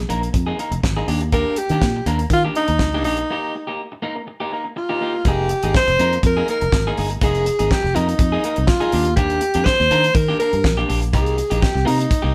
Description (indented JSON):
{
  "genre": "disco",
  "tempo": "122 BPM",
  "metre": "4/4",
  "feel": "straight",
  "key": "F dorian",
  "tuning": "A4 = 440 Hz",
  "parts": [
    { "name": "warm alto saxophone", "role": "melody", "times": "0.0-12.3 s", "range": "Eb4 to C5", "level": "-22 LUFS", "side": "equal", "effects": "none" },
    { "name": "fingered electric bass", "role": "bass", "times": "0.0-12.3 s", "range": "F1 to Eb3", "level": "-24 LUFS", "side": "equal", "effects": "none" },
    { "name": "electric guitar at the edge of break-up", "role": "accompaniment", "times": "0.1-12.3 s", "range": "Bb3 to Bb4", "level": "-27 LUFS", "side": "equal", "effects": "none" },
    { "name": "damped 70s drum kit", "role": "drums", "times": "0.1-12.2 s", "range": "hi-hat, kick drum, snare drum", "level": "-23 LUFS", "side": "equal", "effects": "none" }
  ],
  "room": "moderate studio reverb, RT60 0.8 s",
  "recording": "band playing live in one room",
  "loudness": "-19 LUFS",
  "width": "mono",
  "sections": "0.0-5.3 A section; 5.3-12.3 B section",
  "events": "break 3.3-5.3",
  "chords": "0.0 Fm11; 1.1 Ebmaj7; 3.3 Ebadd9/Bb; 5.3 Fm11; 8.9 Ebmaj7; 11.1 Cm7",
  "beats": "0.34 0.83 | 1.32 1.81 2.31 2.80 | 3.29 3.78 4.27 4.76 | 5.25 5.74 6.23 6.72 | 7.21 7.70 8.19 8.68 | 9.17 9.66 10.15 10.64 | 11.13 11.62 12.11"
}